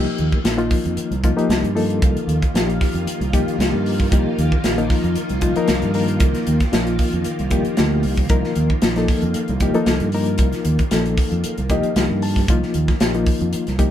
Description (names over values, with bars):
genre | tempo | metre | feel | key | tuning
electric jazz fusion | 115 BPM | 4/4 | swing 53% on 16ths | C dorian | A4 = 440 Hz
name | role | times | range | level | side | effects
reed electric piano | accompaniment | 0.0-13.9 s | F3 to A5 | -22 LUFS | left 4 dB | fast tremolo
string machine, full ensemble | sustained chords | 0.0-13.9 s | Eb3 to F4 | -28 LUFS | right 2 dB | ensemble chorus
fingered electric bass | bass | 0.0-13.9 s | Bb1 to G2 | -21 LUFS | right 1 dB | none
tight funk drum kit | drums | 0.2-13.9 s | hi-hat, kick drum, snare drum | -20 LUFS | equal | none
room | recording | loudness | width
light reverb | band playing live in one room | -16 LUFS | side -10 dB against mid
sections
0.0-13.9 A section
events
reed electric piano fill 11.4-12.5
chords
0.0 Cm11